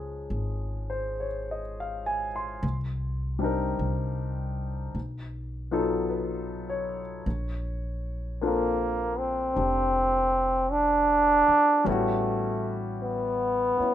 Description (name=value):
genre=jazz ballad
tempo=52 BPM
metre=4/4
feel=swing 66% on 8ths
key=unclear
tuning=A4 = 440 Hz
part: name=clear grand piano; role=accompaniment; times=0.0-13.9 s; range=F3 to C6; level=-31 LUFS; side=left 3 dB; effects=none
part: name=upright bass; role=bass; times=0.0-13.8 s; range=F1 to Db2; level=-33 LUFS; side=equal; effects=none
part: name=clear trombone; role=melody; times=8.5-13.9 s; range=A3 to D4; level=-23 LUFS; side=right 1 dB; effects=none
room=little or no reverb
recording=minimal, uncompressed stereo recording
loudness=-25 LUFS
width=side -11 dB against mid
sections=0.0-13.9 A section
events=none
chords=0.0 Db; 2.6 Cm7; 4.9 B7#11; 7.3 Bbmaj9; 11.9 A13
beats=0.32 1.48 | 2.63 3.79 4.95 6.10 | 7.25 8.41 9.56 10.72 | 11.87 13.03